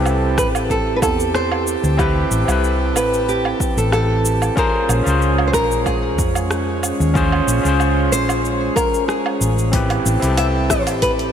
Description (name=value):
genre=sunset chillout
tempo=93 BPM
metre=4/4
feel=straight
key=unclear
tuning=A4 = 441 Hz
part: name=overdriven tine electric piano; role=accompaniment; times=0.0-11.3 s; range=C4 to C5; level=-21 LUFS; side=equal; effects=auto-pan, digital delay
part: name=airy breathy pad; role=sustained chords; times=0.0-11.3 s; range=Ab3 to A4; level=-26 LUFS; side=right 2 dB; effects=chorus
part: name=hollow-body short-scale fingered electric bass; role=bass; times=0.0-11.3 s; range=A1 to F2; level=-20 LUFS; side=equal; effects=tube saturation
part: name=smooth R&B drum kit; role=drums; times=0.1-11.3 s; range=hi-hat, rim click, shaker, woodblock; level=-25 LUFS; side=right 2 dB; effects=none
part: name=nylon-string guitar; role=melody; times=0.4-11.1 s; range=G4 to E5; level=-21 LUFS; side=equal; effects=digital delay
part: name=electronic kick drum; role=drums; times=0.4-11.2 s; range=none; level=-23 LUFS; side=equal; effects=overdrive
room=moderate lush hall reverb, RT60 2.6 s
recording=bright 1980s-style digital production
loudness=-15 LUFS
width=side -8 dB against mid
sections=0.0-11.3 A section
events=none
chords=0.0 Am9; 4.6 Bbm9; 9.7 Am9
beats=0.05 0.70 1.34 | 1.99 2.63 3.28 3.92 | 4.57 5.21 5.86 6.50 | 7.15 7.80 8.44 9.09 | 9.73 10.38 11.02